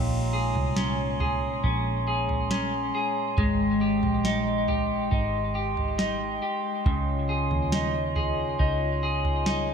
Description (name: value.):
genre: dream pop.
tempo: 69 BPM.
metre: 4/4.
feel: straight.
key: Ab major.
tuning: A4 = 440 Hz.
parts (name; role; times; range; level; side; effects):
glass harmonica; sustained chords; 0.0-9.7 s; Ab3 to C6; -31 LUFS; right 3 dB; none.
clean electric guitar; arpeggios; 0.0-9.7 s; Bb2 to Db5; -27 LUFS; left 2 dB; wide subtle chorus, ping-pong delay.
vintage muted picked electric bass; bass; 0.0-9.7 s; Ab1 to Eb2; -30 LUFS; equal; none.
soft vintage rhythm box; drums; 0.6-9.7 s; kick drum, snare drum, toms; -29 LUFS; right 1 dB; overdrive, gated reverb.
room: moderate plate reverb, RT60 3.5 s.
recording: bright 1980s-style digital production.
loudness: -24 LUFS.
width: side -7 dB against mid.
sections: 0.0-9.7 A section.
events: none.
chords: 0.0 Bbm9; 3.4 Abmaj7; 6.9 Dbmaj9.